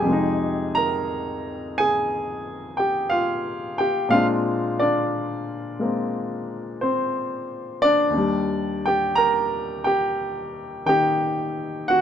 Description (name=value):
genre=solo jazz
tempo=59 BPM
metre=4/4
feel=swing 68% on 8ths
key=F minor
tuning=A4 = 440 Hz
part: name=warm baby grand piano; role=solo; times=0.0-12.0 s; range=Eb2 to Bb5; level=-21 LUFS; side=equal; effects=none
room=light reverb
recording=none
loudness=-21 LUFS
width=side -9 dB against mid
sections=0.1-12.0 A section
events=none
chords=0.1 Fm7; 4.1 Bb9; 8.2 Ebmaj7